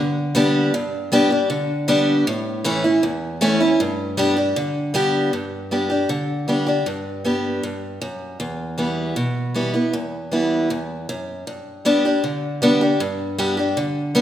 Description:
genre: country.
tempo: 156 BPM.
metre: 4/4.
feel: straight.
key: G major.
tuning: A4 = 435 Hz.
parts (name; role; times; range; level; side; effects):
picked acoustic archtop guitar; solo; 0.0-14.2 s; E2 to G4; -18 LUFS; equal; none.
room: wet recital hall reverb, RT60 1.5 s.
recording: recorded in a church or concert hall.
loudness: -18 LUFS.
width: side -11 dB against mid.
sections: 0.0-5.3 A section; 5.3-11.5 B section; 11.5-14.2 C section.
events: none.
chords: 0.0 G; 2.3 A; 3.8 G; 8.4 Em; 11.5 G.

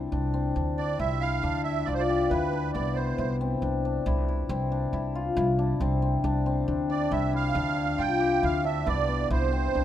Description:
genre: contemporary instrumental, chamber music in an uneven meter.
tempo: 137 BPM.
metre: 7/4.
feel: straight.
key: unclear.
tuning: A4 = 441 Hz.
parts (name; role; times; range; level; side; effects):
cimbalom; arpeggios; 0.0-9.8 s; B3 to G4; -28 LUFS; left 4 dB; none.
upright bass; bass; 0.0-9.8 s; C2 to D2; -28 LUFS; right 1 dB; none.
musette accordion; melody; 0.8-9.8 s; B4 to G5; -29 LUFS; right 8 dB; none.
room: light reverb.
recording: close, detailed microphones.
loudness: -24 LUFS.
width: side -11 dB against mid.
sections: 0.1-9.8 A section.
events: none.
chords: 0.1 G7/C; 9.3 N.C..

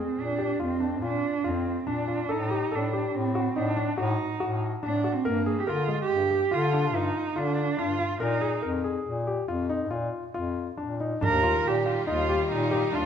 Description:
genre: contemporary instrumental, chamber music in an uneven meter.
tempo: 142 BPM.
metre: 7/4.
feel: straight.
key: Bb major.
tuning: A4 = 439 Hz.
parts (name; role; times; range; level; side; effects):
dark cello; melody; 0.0-13.1 s; Bb3 to Bb4; -28 LUFS; right 6 dB; none.
warm concert grand piano; arpeggios; 0.0-13.1 s; Ab3 to Bb4; -30 LUFS; left 4 dB; none.
breathy bass clarinet; bass; 0.0-13.1 s; Eb2 to D3; -30 LUFS; left 2 dB; none.
clear symphonic string section; sustained chords; 11.2-13.1 s; Eb3 to F4; -34 LUFS; left 1 dB; none.
frame drum; percussion; 11.2-12.9 s; none; -33 LUFS; right 2 dB; none.
room: moderate recital hall reverb, RT60 1.6 s.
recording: none.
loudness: -25 LUFS.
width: side -8 dB against mid.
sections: 0.0-11.2 A section; 11.2-13.1 B section.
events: none.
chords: 0.0 Bb; 2.3 D(b9)/A; 5.3 G7(no3); 8.2 Bb7(no3); 11.2 Ebmaj9.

